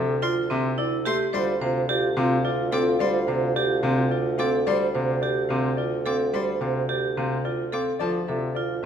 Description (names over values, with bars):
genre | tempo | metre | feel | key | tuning
classical, minimalist pattern music | 108 BPM | 3/4 | straight | unclear | A4 = 440 Hz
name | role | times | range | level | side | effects
bright baby grand piano | melody | 0.0-8.9 s | D5 to F5 | -32 LUFS | left 9 dB | none
bright grand piano | accompaniment | 0.0-8.9 s | C3 to C4 | -28 LUFS | left 2 dB | none
vibraphone with hard mallets | arpeggios | 0.0-8.7 s | C4 to C5 | -26 LUFS | right 4 dB | none
mellow bassoon | bass | 0.0-8.9 s | D2 | -28 LUFS | right 1 dB | none
clear violin | arpeggios | 0.2-8.1 s | A5 to D6 | -36 LUFS | left 5 dB | none
mellow French horn | second line | 1.3-4.4, 8.0-8.8 s | F4 | -30 LUFS | left 1 dB | none
room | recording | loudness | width
moderate scoring stage reverb, RT60 1.6 s | none | -22 LUFS | side -8 dB against mid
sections
0.0-8.9 A section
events
none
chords
0.0 Dm9; 1.3 Fsus2/D; 8.0 Dm9